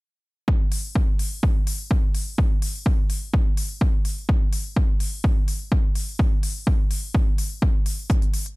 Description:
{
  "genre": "progressive house",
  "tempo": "126 BPM",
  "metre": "4/4",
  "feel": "straight",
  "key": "none",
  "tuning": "none",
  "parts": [
    { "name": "electronic kick drum", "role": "drums", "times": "0.5-8.2 s", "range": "none", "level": "-20 LUFS", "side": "equal", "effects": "overdrive, small room ambience" },
    { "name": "electronic hi-hat", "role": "drums", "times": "0.7-8.6 s", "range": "none", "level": "-32 LUFS", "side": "left 2 dB", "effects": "overdrive, sidechain pumping on hats, small room ambience" }
  ],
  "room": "little or no reverb",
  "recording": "none",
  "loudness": "-20 LUFS",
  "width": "side -23 dB against mid",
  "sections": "0.5-8.6 A section",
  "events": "none",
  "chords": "none",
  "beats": "| 0.48 0.95 1.43 1.91 | 2.38 2.86 3.34 3.81 | 4.29 4.76 5.24 5.72 | 6.19 6.67 7.15 7.62 | 8.10"
}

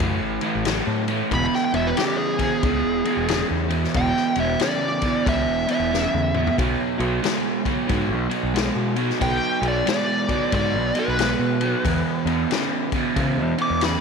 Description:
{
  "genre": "blues rock power trio and southern rock",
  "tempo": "91 BPM",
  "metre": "4/4",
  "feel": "swing 63% on 8ths",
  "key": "E mixolydian",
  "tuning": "A4 = 436 Hz",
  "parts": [
    { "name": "crunchy overdriven guitar", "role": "riff", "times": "0.0-14.0 s", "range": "E2 to G#3", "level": "-23 LUFS", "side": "right 3 dB", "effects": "none" },
    { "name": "growling fingered electric bass", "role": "bass", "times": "0.0-14.0 s", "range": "E1 to C#3", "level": "-26 LUFS", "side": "equal", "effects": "overdrive" },
    { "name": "vintage drum kit", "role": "drums", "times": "0.0-14.0 s", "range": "kick drum, ride cymbal, snare drum, toms", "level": "-27 LUFS", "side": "left 5 dB", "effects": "none" },
    { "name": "fuzz lead guitar", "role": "melody", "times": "1.3-14.0 s", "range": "G4 to D6", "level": "-25 LUFS", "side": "left 1 dB", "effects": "wah, distortion, slapback echo" }
  ],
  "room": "light reverb, small room ambience",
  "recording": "1960s-style stereo",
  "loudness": "-19 LUFS",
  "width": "side -5 dB against mid",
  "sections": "0.0-14.0 A section",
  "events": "drum fill 5.9-6.6",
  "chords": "0.0 A5; 1.3 E; 6.6 B5; 11.9 E5",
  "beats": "0.00 0.66 | 1.32 1.98 2.63 3.29 | 3.95 4.61 5.27 5.93 | 6.59 7.25 7.91 8.56 | 9.22 9.88 10.54 11.20 | 11.86 12.51 13.17 13.83"
}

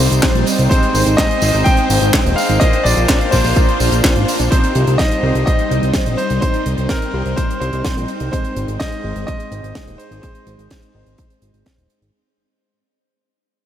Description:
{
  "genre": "italo disco",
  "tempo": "126 BPM",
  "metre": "4/4",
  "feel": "straight",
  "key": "C minor",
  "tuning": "A4 = 440 Hz",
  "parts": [
    { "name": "bright grand piano", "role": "melody", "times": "0.0-11.6 s", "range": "Bb4 to G5", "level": "-21 LUFS", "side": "equal", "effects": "analog delay" },
    { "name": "phased string machine", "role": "sustained chords", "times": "0.0-12.1 s", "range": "G3 to C5", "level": "-23 LUFS", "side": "right 1 dB", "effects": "ensemble chorus, phaser" },
    { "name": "chorused polysynth", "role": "stabs", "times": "0.0-12.1 s", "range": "G3 to C5", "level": "-22 LUFS", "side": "left 1 dB", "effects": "analog delay" },
    { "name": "fat analog bass", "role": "bass", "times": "0.0-12.1 s", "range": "Eb1 to C2", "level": "-18 LUFS", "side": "equal", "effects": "tube saturation" },
    { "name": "tight funk drum kit", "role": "drums", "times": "0.0-12.1 s", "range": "handclaps, hi-hat, snare drum, tambourine", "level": "-21 LUFS", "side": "right 1 dB", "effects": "small room ambience" },
    { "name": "electronic kick drum", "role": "drums", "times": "0.2-11.8 s", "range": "none", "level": "-17 LUFS", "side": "equal", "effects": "small room ambience" }
  ],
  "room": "moderate huge ambient reverb, RT60 7.6 s",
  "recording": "dreamy mix soaked in reverb",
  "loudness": "-13 LUFS",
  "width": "side -10 dB against mid",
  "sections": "0.0-4.5 A section; 4.5-12.1 B section",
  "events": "fade-out 4.5-12.1; filter sweep on analog polysynth 4.5-12.1; filter sweep on string machine 4.5-12.1",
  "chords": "0.0 Cm; 0.7 Ab; 2.6 Bbadd9; 4.5 Cm; 8.3 Ab",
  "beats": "0.23 | 0.71 1.19 1.66 2.14 | 2.61 3.09 3.57 4.04 | 4.52 4.99 5.47 5.95 | 6.42 6.90 7.38 7.85 | 8.33 8.80 9.28 9.76 | 10.23 10.71 11.19 11.66"
}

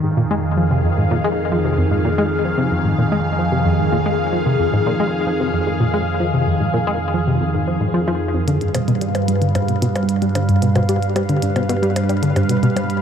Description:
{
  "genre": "ambient, sequencer-driven space music",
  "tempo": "112 BPM",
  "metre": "4/4",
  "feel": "straight",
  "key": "unclear",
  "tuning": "A4 = 440 Hz",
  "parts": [
    { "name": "phased analog pad", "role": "sustained chords", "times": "0.0-13.0 s", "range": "F2 to F5", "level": "-18 LUFS", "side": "right 1 dB", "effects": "phaser, chorus" },
    { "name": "tight sequenced synth", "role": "riff", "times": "0.0-12.9 s", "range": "F2 to Ab3", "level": "-20 LUFS", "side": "left 1 dB", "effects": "chorus, cassette tape, ping-pong delay" },
    { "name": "electronic hi-hat and percussion blips", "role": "percussion", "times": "8.5-13.0 s", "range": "none", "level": "-28 LUFS", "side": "left 1 dB", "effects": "ping-pong delay" }
  ],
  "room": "moderate huge ambient reverb, RT60 8.1 s",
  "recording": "none",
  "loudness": "-16 LUFS",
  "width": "side -8 dB against mid",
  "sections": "0.0-13.0 A section",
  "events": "none",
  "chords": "0.0 Fm7; 8.5 G7",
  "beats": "0.44 0.98 1.51 | 2.05 2.58 3.12 3.66 | 4.19 4.73 5.26 5.80 | 6.33 6.87 7.41 7.94 | 8.48 9.01 9.55 10.09 | 10.62 11.16 11.69 12.23 | 12.76"
}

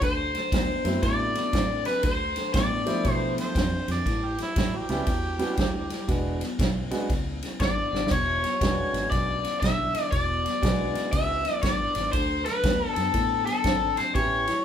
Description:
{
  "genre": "electric blues shuffle",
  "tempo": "119 BPM",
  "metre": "4/4",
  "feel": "swing 64% on 8ths",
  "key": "unclear",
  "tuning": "A4 = 440 Hz",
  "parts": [
    { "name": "raw garage guitar", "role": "melody", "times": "0.0-3.3, 7.6-14.6 s", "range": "A4 to E5", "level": "-26 LUFS", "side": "left 2 dB", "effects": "overdrive" },
    { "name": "electric guitar through a small old amp", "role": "riff", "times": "0.0-14.6 s", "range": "E2 to C4", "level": "-34 LUFS", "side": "left 3 dB", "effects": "none" },
    { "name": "fingered electric bass", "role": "bass", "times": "0.0-14.5 s", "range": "E1 to B2", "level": "-32 LUFS", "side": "equal", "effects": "none" },
    { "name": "natural country drum kit", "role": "drums", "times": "0.0-14.6 s", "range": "crash cymbal, kick drum, ride cymbal, snare drum", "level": "-28 LUFS", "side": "right 1 dB", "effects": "none" },
    { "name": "clear concert grand piano", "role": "accompaniment", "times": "0.8-14.4 s", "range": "F3 to C5", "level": "-31 LUFS", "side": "right 2 dB", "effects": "none" },
    { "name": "clear harmonica", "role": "second line", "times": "3.4-6.2 s", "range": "E4 to D5", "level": "-33 LUFS", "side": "right 3 dB", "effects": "overdrive" }
  ],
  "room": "moderate large studio reverb, RT60 0.9 s",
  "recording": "band playing live in one room",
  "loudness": "-23 LUFS",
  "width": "side -9 dB against mid",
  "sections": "0.0-14.6 A section",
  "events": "drum fill 7.8",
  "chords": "0.0 D7; 2.0 Dm7; 4.1 A7; 6.1 E7; 12.1 D7(no3)",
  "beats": "| 0.02 0.52 1.03 1.53 | 2.04 2.54 3.05 3.56 | 4.06 4.57 5.07 5.58 | 6.08 6.59 7.09 7.60 | 8.10 8.61 9.11 9.62 | 10.12 10.62 11.13 11.63 | 12.14 12.64 13.14 13.65 | 14.15"
}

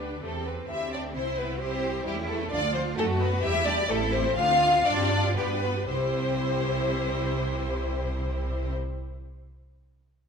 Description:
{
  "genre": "quick classical-period movement for string orchestra",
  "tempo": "113-132 BPM",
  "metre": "2/4",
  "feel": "straight",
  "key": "C major",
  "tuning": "A4 = 444 Hz",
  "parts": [
    { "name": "warm symphonic violin section", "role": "melody", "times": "0.0-8.7 s", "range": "G3 to F4", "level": "-35 LUFS", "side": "left 3 dB", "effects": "none" },
    { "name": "warm symphonic violin section", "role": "second line", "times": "0.0-8.7 s", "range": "G4 to F5", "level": "-27 LUFS", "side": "left 2 dB", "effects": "none" },
    { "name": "rich symphonic viola section", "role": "accompaniment", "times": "0.0-8.7 s", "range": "F3 to A4", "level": "-34 LUFS", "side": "right 2 dB", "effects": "none" },
    { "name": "rich studio cello section", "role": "bass", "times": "0.0-8.7 s", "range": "C3 to G4", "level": "-35 LUFS", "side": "right 2 dB", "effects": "none" },
    { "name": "rich symphonic double bass section", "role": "bass", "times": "0.0-8.7 s", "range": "A1 to G2", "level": "-31 LUFS", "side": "right 2 dB", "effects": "none" }
  ],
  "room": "moderate recital hall reverb, RT60 1.7 s",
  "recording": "none",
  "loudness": "-24 LUFS",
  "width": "side -6 dB against mid",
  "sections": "0.0-5.9 A section; 5.9-8.0 B section",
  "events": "slowing down 3.4-5.9",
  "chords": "0.2 C/E; 1.1 C; 2.1 A7/E; 2.5 Dm; 3.0 B7/F#; 3.4 Em; 3.9 Am7; 4.4 Dm7; 4.9 G7sus4; 5.4 G7; 5.9 C",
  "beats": "| 0.24 0.70 | 1.15 1.61 | 2.06 2.52 | 2.97 3.43 | 3.90 4.38 | 4.86 5.36 | 5.88 6.40 | 6.92 7.44"
}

